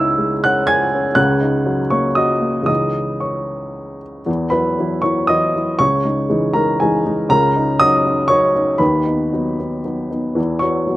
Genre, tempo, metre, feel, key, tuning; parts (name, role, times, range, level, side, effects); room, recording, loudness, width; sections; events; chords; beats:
neoclassical minimalist piano; 112-123 BPM; 3/4; rubato; C# dorian; A4 = 439 Hz
dark baby grand piano; solo; 0.0-11.0 s; C#2 to G#6; -15 LUFS; equal; slapback echo
little or no reverb; recorded outdoors, with no room sound; -15 LUFS; side -16 dB against mid
0.0-4.3 A section; 4.3-11.0 A section
0.0 C#madd9; 1.2 F#6/C#; 2.7 C#madd9; 4.3 Esus2; 5.8 C#madd9; 7.3 F#6/C#; 8.8 B/D#; 10.4 Esus2
0.19 0.68 | 1.17 1.66 2.17 | 2.69 3.22 3.75 | 4.28 4.79 5.30 | 5.80 6.29 6.79 | 7.28 7.78 8.29 | 8.80 9.33 9.85 | 10.37 10.89